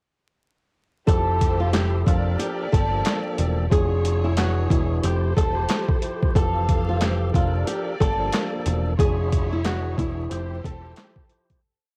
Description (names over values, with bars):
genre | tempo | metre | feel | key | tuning
hip hop, boom-bap hip-hop | 91 BPM | 4/4 | swing 59% on 16ths | unclear | A4 = 440 Hz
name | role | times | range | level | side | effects
flamenco guitar | melody | 1.1-11.1 s | E4 to A4 | -30 LUFS | equal | cassette tape
tonewheel organ | accompaniment | 1.1-11.6 s | E3 to C5 | -33 LUFS | equal | overdrive, fast rotary speaker, cassette tape
dark symphonic string section | stabs | 1.1-11.6 s | Bb3 to F5 | -36 LUFS | equal | cassette tape, tape echo
deep dub picked electric bass | bass | 1.1-10.9 s | E1 to G1 | -26 LUFS | equal | none
boom bap sampler-style drum kit | drums | 1.1-11.6 s | handclaps, hi-hat, kick drum, snare drum | -25 LUFS | equal | cassette tape
room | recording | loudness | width
little or no reverb | home recording on cassette, vinyl crackle | -22 LUFS | mono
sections
1.1-11.6 hook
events
fade-out 9.0-11.6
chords
1.1 Fmaj9; 2.1 Gm7/F; 3.7 E7/F; 5.0 Am7; 6.4 Fmaj9; 7.3 Gm7/F; 9.0 E7/F; 10.3 Am7